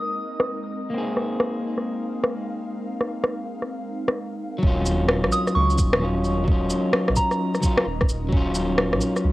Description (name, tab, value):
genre	future garage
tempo	130 BPM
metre	4/4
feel	swing 65% on 16ths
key	Eb dorian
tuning	A4 = 440 Hz
part	soft synth bell	melody	0.0-0.4, 5.3-7.6 s	Bb5 to Eb6	-29 LUFS	right 1 dB	chorus, phaser, cassette tape, analog delay
part	electric guitar at the edge of break-up	accompaniment	0.0-9.3 s	Gb3 to Ab4	-26 LUFS	left 1 dB	sidechain pumping, analog delay
part	ethereal airy pad	sustained chords	0.0-9.3 s	Gb3 to F5	-32 LUFS	right 1 dB	ensemble chorus, built-in reverb, sidechain pumping
part	electronic rim click, cabasa and shaker	drums	0.4-9.2 s	none	-23 LUFS	equal	low-pass filter on snare, cassette tape, low-pass filter on perc
part	dark detuned saw bass	bass	4.6-9.3 s	Eb1 to Db2	-25 LUFS	equal	sidechain pumping
part	electronic kick drum	drums	4.6-8.4 s	none	-20 LUFS	equal	cassette tape
room	light reverb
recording	home recording on cassette, low-pass filter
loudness	-21 LUFS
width	side -18 dB against mid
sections	0.0-4.6 A section; 4.6-9.3 B section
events	none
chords	0.0 Abadd9; 4.6 Ebm7